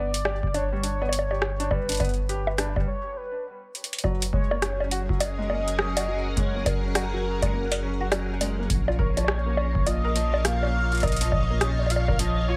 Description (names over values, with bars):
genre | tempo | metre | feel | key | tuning
IDM | 103 BPM | 4/4 | swing 62% on 16ths | Gb major | A4 = 442 Hz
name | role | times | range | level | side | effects
warm velvety synth lead | melody | 0.0-12.6 s | Bb4 to F5 | -34 LUFS | equal | chorus, delay
felt-muted upright piano | arpeggios | 0.0-12.6 s | F3 to Bb4 | -36 LUFS | equal | dub echo
warm sub bass | bass | 0.0-12.6 s | Gb1 to Bb1 | -31 LUFS | equal | none
electro analog drum machine | drums | 0.1-12.3 s | bongos, hi-hat, rim click | -30 LUFS | equal | none
electronic kick drum | drums | 0.4-12.2 s | none | -30 LUFS | equal | none
soft string machine | sustained chords | 4.5-12.6 s | Bb2 to Gb5 | -36 LUFS | equal | phaser, ensemble chorus
room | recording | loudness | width
little or no reverb | none | -26 LUFS | mono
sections
0.0-4.0 A section; 4.0-12.6 B section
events
break 2.9-4.0; drum fill 3.7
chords
0.0 G; 4.0 Gbadd9; 8.7 Bbm